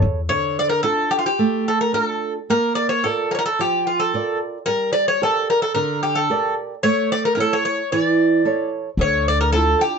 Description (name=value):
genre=greek folk, Greek bouzouki band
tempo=110 BPM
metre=4/4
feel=straight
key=D harmonic minor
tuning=A4 = 441 Hz
part: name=flamenco guitar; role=accompaniment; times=0.0-10.0 s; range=D3 to D5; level=-23 LUFS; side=right 4 dB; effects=none
part: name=upright bass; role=bass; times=0.0-0.3, 9.0-9.7 s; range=D2 to E2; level=-20 LUFS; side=left 1 dB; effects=none
part: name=Greek bouzouki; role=melody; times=0.3-10.0 s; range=F4 to D5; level=-19 LUFS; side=left 1 dB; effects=none
room=moderate small room reverb, RT60 0.5 s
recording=dark, warm production, nothing above 8.0 kHz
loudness=-17 LUFS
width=side -6 dB against mid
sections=0.3-10.0 A section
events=none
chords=0.3 Dm; 2.5 Bb; 4.7 Gm; 6.8 A; 9.0 Dmadd9